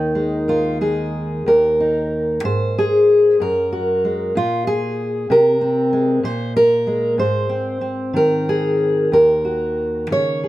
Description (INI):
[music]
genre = folk, solo fingerstyle acoustic guitar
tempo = 62 BPM (dotted quarters)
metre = 6/8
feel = rubato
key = unclear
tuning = A4 = 441 Hz
[part]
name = fingerpicked steel-string acoustic guitar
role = solo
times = 0.0-10.5 s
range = Eb2 to Db5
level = -16 LUFS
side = equal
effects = none
[sound]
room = little or no reverb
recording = none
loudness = -15 LUFS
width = side -16 dB against mid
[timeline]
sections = 0.0-1.5 A section; 1.5-10.5 B section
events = none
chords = 0.0 Eb5; 1.5 N.C.; 2.4 Ab; 3.4 Gbadd9; 4.4 N.C.; 5.3 Ab/C; 6.2 Abadd9/Bb; 7.2 Ab; 9.1 Ebm